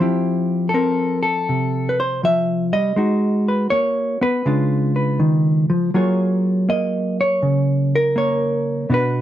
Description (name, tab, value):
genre	solo jazz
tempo	81 BPM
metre	4/4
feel	swing 68% on 8ths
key	unclear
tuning	A4 = 440 Hz
part	hollow-body jazz guitar	solo	0.0-9.2 s	B2 to E5	-16 LUFS	equal	none
room	light reverb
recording	dark, warm production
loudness	-16 LUFS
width	side -12 dB against mid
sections	0.0-9.2 A section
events	none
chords	0.0 Fmaj9; 3.0 Abm9; 4.4 Db7b9; 5.9 Gbmaj9